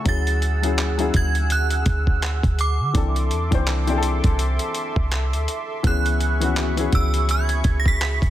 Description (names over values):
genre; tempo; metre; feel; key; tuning
contemporary R&B; 83 BPM; 4/4; swing 58% on 16ths; unclear; A4 = 440 Hz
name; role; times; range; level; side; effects
dark baby grand piano; accompaniment; 0.0-8.3 s; E3 to C5; -27 LUFS; left 7 dB; none
warm analog pad; sustained chords; 0.0-8.3 s; G#4 to E6; -30 LUFS; right 3 dB; chorus, tremolo
synth chime; melody; 0.1-8.3 s; D6 to B6; -27 LUFS; right 4 dB; ensemble chorus, tape echo
clean 808-style bass; bass; 0.1-8.3 s; C2 to D3; -22 LUFS; equal; none
dusty soul sampler-style drum kit; drums; 0.1-8.3 s; handclaps, hi-hat, kick drum; -23 LUFS; equal; none
room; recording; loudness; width
digital ambience; dense, heavily limited modern master; -18 LUFS; side -13 dB against mid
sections
0.1-8.3 A section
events
none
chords
0.1 Dmaj9#11; 3.0 C69; 5.8 C#m7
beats
| 0.06 0.78 1.50 2.23 | 2.95 3.67 4.39 5.12 | 5.84 6.56 7.29 8.01